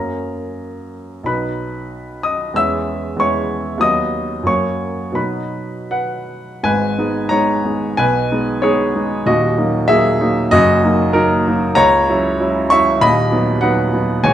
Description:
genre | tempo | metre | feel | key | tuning
classical, romantic character piece for solo piano | 78-101 BPM | 2/4 | rubato | B major, G# minor from 6.7 s | A4 = 440 Hz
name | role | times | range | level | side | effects
warm baby grand piano | solo | 0.0-14.3 s | D#1 to E6 | -14 LUFS | equal | none
room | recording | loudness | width
moderate recital hall reverb, RT60 1.4 s | close, detailed microphones | -14 LUFS | side -11 dB against mid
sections
0.0-6.7 A section; 6.7-14.3 B section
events
none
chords
0.0 F#; 1.3 B; 2.6 C#m/E; 3.8 B/D#; 4.5 F#; 5.2 B; 6.7 G#m; 8.0 G#m/B; 9.3 D#m; 10.5 D#m/F#; 11.8 F#7/C#; 13.0 B/D#

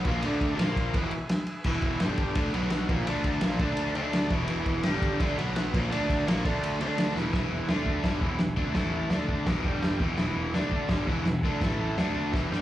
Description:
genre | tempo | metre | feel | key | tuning
garage rock duo or trio | 169 BPM | 4/4 | straight | unclear | A4 = 438 Hz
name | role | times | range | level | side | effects
combo organ | sustained chords | 0.0-12.6 s | D4 to A5 | -40 LUFS | equal | none
overdriven electric guitar | riff | 0.0-12.6 s | E2 to D4 | -30 LUFS | equal | slapback echo
fuzz picked electric bass | bass | 0.0-12.6 s | E1 to D2 | -31 LUFS | equal | overdrive
vintage drum kit | drums | 0.0-12.6 s | crash cymbal, kick drum, ride cymbal, snare drum, toms | -29 LUFS | equal | none
room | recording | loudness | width
studio ambience | live gig heard through the venue's PA, club reverb | -25 LUFS | side -13 dB against mid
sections
0.0-7.3 A section; 7.3-12.6 B section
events
transistor combo organ fill 3.8-4.5; drum fill 7.2, 12.3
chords
0.1 E; 0.2 D5; 0.6 A#5; 1.0 E; 2.0 G5; 2.4 E; 2.5 B5; 2.9 E; 3.1 D5; 3.4 E; 3.6 D5; 4.3 E; 4.9 G5; 5.2 E; 5.4 B5; 5.7 E; 5.9 D5; 6.3 E; 6.4 D5; 7.2 E; 7.7 D5; 8.1 E; 8.8 A5; 9.1 D5; 9.5 E; 9.7 G5; 10.0 E; 10.5 D5; 10.9 E; 11.6 A5; 12.0 D5; 12.3 E

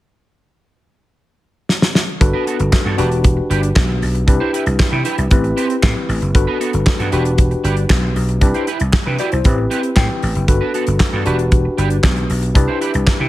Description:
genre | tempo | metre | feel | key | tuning
early-eighties boogie funk | 116 BPM | 4/4 | straight | unclear | A4 = 439 Hz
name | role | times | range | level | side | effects
damped 70s drum kit | drums | 1.7-13.2 s | handclaps, hi-hat, kick drum, snare drum | -15 LUFS | equal | gated reverb
tine electric piano | accompaniment | 2.2-13.3 s | C4 to G5 | -20 LUFS | left 2 dB | overdrive, fast stereo tremolo
electric guitar at the edge of break-up | riff | 2.2-13.3 s | B3 to C5 | -24 LUFS | right 6 dB | analog chorus
vintage slap bass | bass | 2.2-13.3 s | E1 to C3 | -18 LUFS | equal | none
room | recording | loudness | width
studio ambience | none | -14 LUFS | side -16 dB against mid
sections
0.1-2.2 A section; 2.2-13.3 B section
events
drum fill 1.7-2.2; tine electric piano fill 9.7-10.5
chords
0.1 N.C.; 2.2 Gmaj9; 3.0 Em7; 4.3 Cmaj7; 5.3 Am9; 6.3 Gmaj9; 7.1 Em7; 8.4 Cmaj7; 9.5 Am9; 10.5 Gmaj9; 11.3 Em7; 12.6 Cmaj7

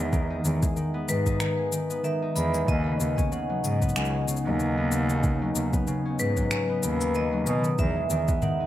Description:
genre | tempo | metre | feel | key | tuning
folktronica | 94 BPM | 4/4 | swing 56% on 16ths | E major | A4 = 438 Hz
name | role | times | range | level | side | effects
vibraphone with medium hard mallets | second line | 0.0-8.7 s | B4 to D#6 | -30 LUFS | equal | tape echo
warm analog pad | sustained chords | 0.0-8.7 s | C#3 to D#4 | -34 LUFS | equal | lush chorus
concert harp | arpeggios | 0.0-8.7 s | C#3 to D#4 | -29 LUFS | left 1 dB | tape echo
rich cello | bass | 0.0-8.2 s | C#2 to B2 | -29 LUFS | equal | none
electronic kick drum | drums | 0.1-8.4 s | none | -27 LUFS | equal | overdrive
organic electronic drum kit | drums | 0.1-8.6 s | cabasa, finger snaps, toms | -33 LUFS | left 1 dB | none
room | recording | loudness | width
light reverb, studio ambience | none | -23 LUFS | side -13 dB against mid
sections
0.0-8.7 A section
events
none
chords
0.0 Emaj7; 2.7 Badd9; 7.8 Emaj7

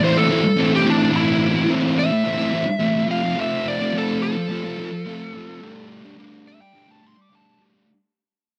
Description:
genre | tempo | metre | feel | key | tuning
rock | 107 BPM | 4/4 | straight | unclear | A4 = 440 Hz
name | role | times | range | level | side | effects
biting lead guitar | melody | 0.0-7.6 s | D4 to D6 | -25 LUFS | equal | overdrive, cassette tape
thick fuzz guitar | riff | 0.0-7.9 s | A2 to G4 | -22 LUFS | equal | distortion
room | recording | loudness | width
light reverb, digital ambience | home recording on cassette | -20 LUFS | mono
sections
0.0-7.9 A section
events
fade-out 0.0-7.9; lead electric guitar solo 0.0-7.9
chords
0.0 Am; 3.1 F; 5.6 Gsus2

